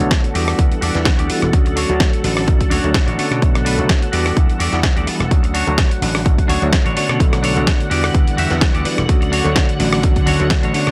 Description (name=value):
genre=filtered disco house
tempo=127 BPM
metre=4/4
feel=swing 54% on 16ths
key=D major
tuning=A4 = 440 Hz
part: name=overdriven reed electric piano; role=accompaniment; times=0.0-10.9 s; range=D3 to F#5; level=-24 LUFS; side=equal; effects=fast tremolo, phaser, vintage 12-bit sampler grit, sidechain pumping, low-pass filter
part: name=string machine, full ensemble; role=sustained chords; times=0.0-10.9 s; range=D3 to F#5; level=-27 LUFS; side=equal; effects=ensemble chorus, vintage 12-bit sampler grit, sidechain pumping, low-pass filter
part: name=clean electric guitar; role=riff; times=0.0-10.9 s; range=D4 to E5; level=-26 LUFS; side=equal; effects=sidechain pumping, low-pass filter
part: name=vintage slap bass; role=bass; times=0.0-10.9 s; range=E1 to B2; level=-23 LUFS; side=equal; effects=transformer saturation, sidechain pumping, low-pass filter
part: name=dusty soul sampler-style drum kit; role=drums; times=0.0-10.9 s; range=hi-hat, rim click, snare drum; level=-24 LUFS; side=equal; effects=sidechain pumping on hats, sidechain pumping on cymbals
part: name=electronic kick drum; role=drums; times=0.1-10.6 s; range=none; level=-18 LUFS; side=equal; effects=none
room=little or no reverb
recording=dry, gritty hardware recording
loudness=-16 LUFS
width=mono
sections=0.0-10.9 A section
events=filter sweep 0.0-10.9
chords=0.3 Em9; 1.5 Dmaj7; 3.2 Bm9; 4.1 Em9; 5.3 Dmaj7; 7.0 Bm9; 7.9 Em9; 9.1 Dmaj7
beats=0.11 0.59 1.06 | 1.53 2.00 2.48 2.95 | 3.42 3.89 4.37 4.84 | 5.31 5.78 6.26 6.73 | 7.20 7.67 8.15 8.62 | 9.09 9.56 10.04 10.51